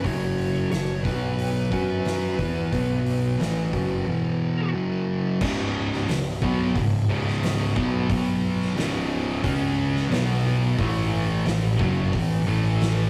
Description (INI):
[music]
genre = stoner and doom metal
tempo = 89 BPM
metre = 4/4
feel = straight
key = C# minor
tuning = A4 = 440 Hz
[part]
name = fuzz lead guitar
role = melody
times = 0.0-4.7 s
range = B4 to C#5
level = -35 LUFS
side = equal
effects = distortion
[part]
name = thick fuzz guitar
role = riff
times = 0.0-13.1 s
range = C#2 to F#4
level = -30 LUFS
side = equal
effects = distortion
[part]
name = thick fuzz guitar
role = riff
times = 0.0-13.1 s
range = C#2 to F#4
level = -28 LUFS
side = equal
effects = distortion
[part]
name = fuzz fingered electric bass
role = bass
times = 0.0-13.1 s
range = C#1 to F#2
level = -34 LUFS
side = equal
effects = overdrive
[part]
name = oversized low-tuned drum kit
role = drums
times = 0.0-13.0 s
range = crash cymbal, hi-hat, kick drum, snare drum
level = -31 LUFS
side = equal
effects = none
[part]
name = heavy high-gain guitar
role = riff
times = 5.4-13.1 s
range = C#2 to C#4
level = -34 LUFS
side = equal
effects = distortion
[sound]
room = wet booth ambience, RT60 0.2 s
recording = rough rehearsal-room recording, tube saturation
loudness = -24 LUFS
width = mono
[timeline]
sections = 0.0-5.4 A section; 5.4-13.1 B section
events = none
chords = 0.0 F#5; 1.1 B5; 1.7 F#5; 2.7 B5; 3.4 F#5; 4.1 E5; 4.7 F#5; 5.4 C#5; 7.8 B5; 8.8 C#5; 10.1 B5; 10.8 A5